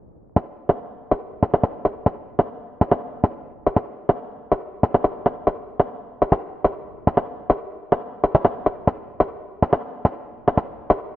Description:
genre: hip hop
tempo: 141 BPM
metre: 4/4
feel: half-time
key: none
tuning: none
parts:
  - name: electronic hi-hat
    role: drums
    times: 0.4-11.0 s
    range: none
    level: -26 LUFS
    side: left 1 dB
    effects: vintage 12-bit sampler grit
room: digital ambience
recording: worn, warbling old tape, cassette tape, vinyl crackle, warbly pitch drift, low-pass filter, nothing above 10.4 kHz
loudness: -20 LUFS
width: side -14 dB against mid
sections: 0.4-11.2 A section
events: kick muted 0.4-7.2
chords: none

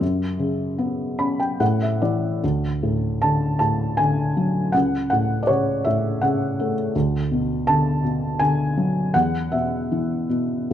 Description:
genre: classical, lyrical solo piano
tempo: 71-83 BPM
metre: 3/4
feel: rubato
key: D lydian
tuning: A4 = 439 Hz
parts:
  - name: felt-muted upright piano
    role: solo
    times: 0.0-10.7 s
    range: C#2 to B5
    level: -19 LUFS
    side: equal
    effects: none
room: light reverb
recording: dark, warm production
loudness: -19 LUFS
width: side -10 dB against mid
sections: 0.0-2.4 A section; 2.4-10.7 B section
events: felt piano fill 0.8-2.4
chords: 0.0 F#sus4; 1.6 A5; 2.4 D; 4.7 Dmaj9/C#; 7.0 Bm/D; 9.1 E5

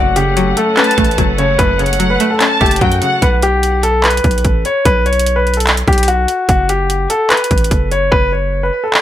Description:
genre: hip hop, trap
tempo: 147 BPM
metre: 4/4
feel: half-time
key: unclear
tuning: A4 = 439 Hz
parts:
  - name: warm concert grand piano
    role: melody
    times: 0.0-8.9 s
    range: F#4 to C#5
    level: -15 LUFS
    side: left 2 dB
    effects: low-pass filter, digital delay
  - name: string-like resonator pluck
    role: accompaniment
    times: 0.0-3.2 s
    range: F#2 to C#4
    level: -18 LUFS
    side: left 1 dB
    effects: chorus, low-pass filter
  - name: clear chamber string section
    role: sustained chords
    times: 0.0-3.2 s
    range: A3 to F#5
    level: -23 LUFS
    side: equal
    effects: low-pass filter
  - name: long sustained 808-style bass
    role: bass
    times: 0.0-8.7 s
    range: F#1 to F#2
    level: -18 LUFS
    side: equal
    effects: none
  - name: trap drum kit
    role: drums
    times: 0.2-9.0 s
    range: handclaps, hi-hat, kick drum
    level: -15 LUFS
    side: right 1 dB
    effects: none
  - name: dark studio violin section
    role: second line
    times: 0.8-3.2 s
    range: F#5 to A5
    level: -20 LUFS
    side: equal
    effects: digital delay
room: light reverb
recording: none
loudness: -11 LUFS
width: side -12 dB against mid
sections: 0.0-3.2 A section; 3.2-9.0 B section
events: hi-hats muted 8.1-9.0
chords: 0.0 F#m; 3.2 B5; 6.5 N.C.

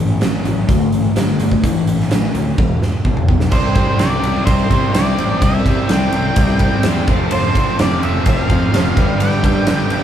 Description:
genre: classic rock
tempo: 127 BPM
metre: 4/4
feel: straight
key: unclear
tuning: A4 = 440 Hz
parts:
  - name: biting overdriven guitar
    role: riff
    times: 0.0-10.0 s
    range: E2 to E4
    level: -21 LUFS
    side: left 5 dB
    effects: none
  - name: raw garage guitar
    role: riff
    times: 0.0-10.0 s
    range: E2 to C4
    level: -23 LUFS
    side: right 3 dB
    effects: overdrive
  - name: fuzz picked electric bass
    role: bass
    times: 0.0-10.0 s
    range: E1 to C3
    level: -20 LUFS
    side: equal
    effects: overdrive
  - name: huge arena drum kit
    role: drums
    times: 0.2-10.0 s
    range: crash cymbal, hi-hat, kick drum, ride cymbal, snare drum, toms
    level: -16 LUFS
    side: right 1 dB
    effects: none
  - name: octave-fuzz lead guitar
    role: melody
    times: 3.5-10.0 s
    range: C5 to G5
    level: -22 LUFS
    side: right 1 dB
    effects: distortion
  - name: bright tonewheel organ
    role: sustained chords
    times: 3.5-10.0 s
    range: D4 to C5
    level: -32 LUFS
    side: right 1 dB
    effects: none
  - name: honky-tonk upright piano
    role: accompaniment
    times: 7.3-10.0 s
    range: D4 to D5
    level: -27 LUFS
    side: right 3 dB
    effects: none
room: moderate large studio reverb, RT60 0.9 s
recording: band playing live in one room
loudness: -13 LUFS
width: side -10 dB against mid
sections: 0.0-3.5 A section; 3.5-10.0 B section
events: drum fill 2.6-3.5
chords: 0.0 A5; 0.7 D5; 1.6 A5; 2.6 E5; 3.5 C; 7.1 F; 9.0 G

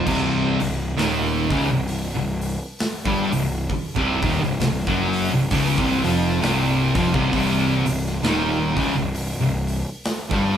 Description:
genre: stoner and doom metal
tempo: 66 BPM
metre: 4/4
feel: swing 58% on 8ths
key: C minor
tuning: A4 = 440 Hz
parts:
  - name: distorted electric guitar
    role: riff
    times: 0.0-10.6 s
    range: C2 to G3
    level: -26 LUFS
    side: equal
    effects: overdrive
  - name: thick fuzz guitar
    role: riff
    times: 0.0-10.6 s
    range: C2 to G3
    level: -24 LUFS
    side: left 5 dB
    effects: distortion
  - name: thick fuzz guitar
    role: riff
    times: 0.0-10.6 s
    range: C2 to G3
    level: -25 LUFS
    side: right 6 dB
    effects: distortion
  - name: fuzz picked electric bass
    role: bass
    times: 0.0-10.6 s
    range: C1 to G1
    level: -26 LUFS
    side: equal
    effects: overdrive
  - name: big rock drum kit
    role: drums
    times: 0.1-10.6 s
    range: crash cymbal, hi-hat, kick drum, snare drum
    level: -28 LUFS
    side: equal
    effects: none
room: moderate large studio reverb, RT60 1.0 s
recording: band playing live in one room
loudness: -19 LUFS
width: side -9 dB against mid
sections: 0.0-10.6 A section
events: none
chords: 0.0 Cm

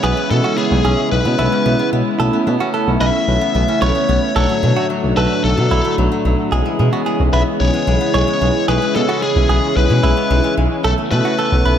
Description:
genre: synth-pop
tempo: 111 BPM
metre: 4/4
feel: straight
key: unclear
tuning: A4 = 440 Hz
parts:
  - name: biting lead guitar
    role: melody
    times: 0.0-11.8 s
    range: G#4 to E5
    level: -20 LUFS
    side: left 3 dB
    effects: overdrive, dub echo
  - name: direct-recorded clean electric guitar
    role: second line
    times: 0.0-11.7 s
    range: E4 to C#5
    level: -23 LUFS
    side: right 5 dB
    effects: dub echo
  - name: mellow synth brass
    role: accompaniment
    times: 0.0-11.8 s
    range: G#3 to A4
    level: -21 LUFS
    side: equal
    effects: chorus, dub echo
  - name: brassy analog pad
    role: sustained chords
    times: 0.0-11.8 s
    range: A2 to F#4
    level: -23 LUFS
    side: equal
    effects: chorus
  - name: koto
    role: arpeggios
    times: 0.0-11.8 s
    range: F#3 to C#4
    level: -25 LUFS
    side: left 3 dB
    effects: dub echo
  - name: smooth gliding synth bass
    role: bass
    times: 0.0-11.8 s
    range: B1 to B2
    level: -16 LUFS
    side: equal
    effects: none
room: moderate echo chamber reverb, RT60 2.1 s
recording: echo-heavy mix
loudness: -13 LUFS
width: side -9 dB against mid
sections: 0.0-11.8 A section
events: none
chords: 0.0 C#m7/B; 2.2 Aadd9/B; 4.4 D/B; 6.5 C#m7/B; 10.8 Aadd9/B

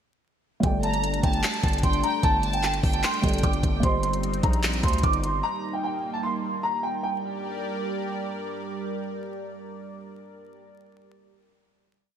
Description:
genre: hip hop, trap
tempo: 150 BPM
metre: 4/4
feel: half-time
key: G minor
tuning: A4 = 439 Hz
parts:
  - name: dark grand piano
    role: melody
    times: 0.6-8.2 s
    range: G5 to D6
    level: -28 LUFS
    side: right 1 dB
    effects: lush chorus, ping-pong delay
  - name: felt-muted upright piano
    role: accompaniment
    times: 0.6-5.5 s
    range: G3 to Eb5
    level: -31 LUFS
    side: right 1 dB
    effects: lush chorus
  - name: warm analog pad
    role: sustained chords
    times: 0.6-10.6 s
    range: G3 to D5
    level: -32 LUFS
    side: right 1 dB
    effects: chorus, phaser
  - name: hard-hitting 808-style bass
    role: bass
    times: 0.6-5.4 s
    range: G1 to D2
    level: -27 LUFS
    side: equal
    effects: none
  - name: trap drum kit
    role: drums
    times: 0.6-5.3 s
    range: handclaps, hi-hat, kick drum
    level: -25 LUFS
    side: equal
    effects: gated reverb
  - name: warm studio violin section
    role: second line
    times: 0.8-3.8 s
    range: G5 to Bb5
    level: -32 LUFS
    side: right 1 dB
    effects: ping-pong delay
room: moderate lush hall reverb, RT60 2.2 s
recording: bright 1980s-style digital production, vinyl crackle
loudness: -23 LUFS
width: side -9 dB against mid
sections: 0.6-7.0 hook; 7.0-10.2 final chord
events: none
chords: 0.6 Gsus2; 3.8 Cm/G; 5.4 Eb/G; 7.0 Gm

